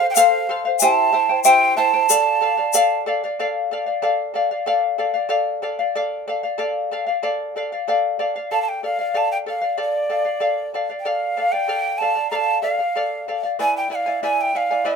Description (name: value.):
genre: andean folk, Andean ensemble.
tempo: 94 BPM.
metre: 2/4.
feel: straight.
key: D minor.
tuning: A4 = 440 Hz.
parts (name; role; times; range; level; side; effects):
breathy hollow quena; melody; 0.0-3.0, 8.5-15.0 s; D5 to Bb5; -19 LUFS; right 4 dB; none.
charango; accompaniment; 0.0-15.0 s; E4 to G#5; -20 LUFS; left 3 dB; none.
tube shaker; percussion; 0.2-2.9 s; none; -18 LUFS; left 8 dB; none.
room: moderate studio reverb, RT60 0.6 s.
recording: minimal, uncompressed stereo recording.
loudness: -18 LUFS.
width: side -5 dB against mid.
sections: 0.0-3.4 A section; 3.4-8.5 B section; 8.5-15.0 C section.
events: none.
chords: 0.0 F; 0.8 C; 2.1 Dm; 13.6 E7.